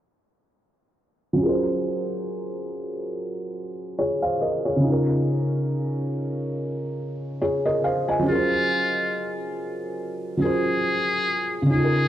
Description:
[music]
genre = hip hop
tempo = 70 BPM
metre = 4/4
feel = swing 56% on 16ths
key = unclear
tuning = A4 = 440 Hz
[part]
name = felt-muted upright piano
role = accompaniment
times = 1.3-12.1 s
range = Db3 to Ab5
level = -23 LUFS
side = equal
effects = cassette tape, low-pass filter
[part]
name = trumpet with metal mute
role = melody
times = 8.3-12.1 s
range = F4 to Ab4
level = -24 LUFS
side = left 1 dB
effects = low-pass filter
[sound]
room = moderate plate reverb, RT60 3.5 s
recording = low-pass filter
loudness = -22 LUFS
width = side -12 dB against mid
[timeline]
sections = 1.4-8.3 A section; 8.3-12.1 B section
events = filter sweep 1.4-8.3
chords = 1.4 Gbmaj9#11

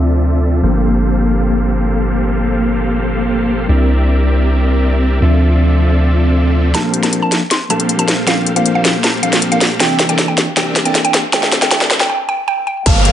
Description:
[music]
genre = future bass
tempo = 157 BPM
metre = 4/4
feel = half-time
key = G dorian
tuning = A4 = 440 Hz
[part]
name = mellow tine electric piano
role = accompaniment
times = 0.0-12.1 s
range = E3 to E5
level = -20 LUFS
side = left 1 dB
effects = medium stereo tremolo, sidechain pumping, digital delay
[part]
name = dense compressed supersaw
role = riff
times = 0.0-13.1 s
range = Bb3 to A5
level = -18 LUFS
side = equal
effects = sidechain pumping, low-pass filter, digital delay
[part]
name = long sustained 808-style bass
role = bass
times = 0.0-6.7, 12.9-13.1 s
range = G1 to D2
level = -14 LUFS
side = equal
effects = sidechain pumping
[part]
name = mallet-like synth pluck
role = melody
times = 6.7-13.0 s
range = F5 to C6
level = -19 LUFS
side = right 1 dB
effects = chorus, phaser, sidechain pumping, dub echo
[part]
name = trap drum kit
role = drums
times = 6.7-13.1 s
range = crash cymbal, hi-hat, snare drum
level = -14 LUFS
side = equal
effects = high-pass filter on snare, low-pass filter on snare, high-pass filter on hats, low-pass filter on hats, high-pass filter on cymbals, low-pass filter on cymbals
[part]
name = airy dreamy lead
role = arpeggios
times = 12.9-13.1 s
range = F5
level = -18 LUFS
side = right 1 dB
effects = chorus, phaser, sidechain pumping
[part]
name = electronic kick drum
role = drums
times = 12.9 s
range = none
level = -12 LUFS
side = equal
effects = distortion
[part]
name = downlifter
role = sound effects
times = 12.9-13.1 s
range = none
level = -16 LUFS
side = left 1 dB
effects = none
[sound]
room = moderate digital room reverb, RT60 1.0 s, digital ambience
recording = high-pass filter, low-pass filter, nothing above 10.8 kHz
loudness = -12 LUFS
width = side -11 dB against mid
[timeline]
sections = 0.0-6.7 A section; 6.7-12.9 B section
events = filter sweep 0.0-6.7; build-up 6.7-12.9; drum fill 6.7-12.1; filter sweep on supersaw synth 6.7-12.9; break 12.1-12.9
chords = 0.0 Dm9; 0.6 Gm11; 3.7 C9; 5.2 Dm9; 6.7 Gm11; 9.8 C9; 11.3 Dsus2

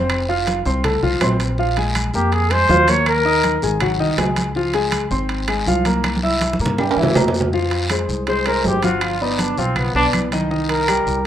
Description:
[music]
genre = Afro-Cuban jazz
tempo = 162 BPM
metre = 4/4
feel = straight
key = F minor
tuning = A4 = 440 Hz
[part]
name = warm concert grand piano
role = accompaniment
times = 0.0-11.2 s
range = Eb3 to F6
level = -20 LUFS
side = left 1 dB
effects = none
[part]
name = upright bass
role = bass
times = 0.0-11.3 s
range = F1 to G2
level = -23 LUFS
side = equal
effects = none
[part]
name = claves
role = percussion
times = 0.1-11.1 s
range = none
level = -32 LUFS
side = left 2 dB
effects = none
[part]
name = congas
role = percussion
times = 0.1-11.3 s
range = none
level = -25 LUFS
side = equal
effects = none
[part]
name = guiro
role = percussion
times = 0.1-11.3 s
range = none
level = -30 LUFS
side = left 2 dB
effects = none
[part]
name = timbales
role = percussion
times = 0.1-11.1 s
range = none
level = -24 LUFS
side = right 4 dB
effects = none
[part]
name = dark trumpet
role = melody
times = 2.2-3.8, 8.3-11.3 s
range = B3 to Db5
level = -18 LUFS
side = equal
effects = none
[sound]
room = wet small room reverb, RT60 0.6 s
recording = rough home demo mix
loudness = -16 LUFS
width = side -10 dB against mid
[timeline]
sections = 0.0-7.5 A section; 7.5-11.3 B section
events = drum fill 6.0-7.5; trumpet solo 7.5-11.3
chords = 0.1 F; 1.6 Bbsus2; 3.1 Eb5; 3.8 Ab7; 4.6 Dbmaj7; 6.0 C7; 7.5 Fmadd9; 9.0 G7; 10.5 Cm7

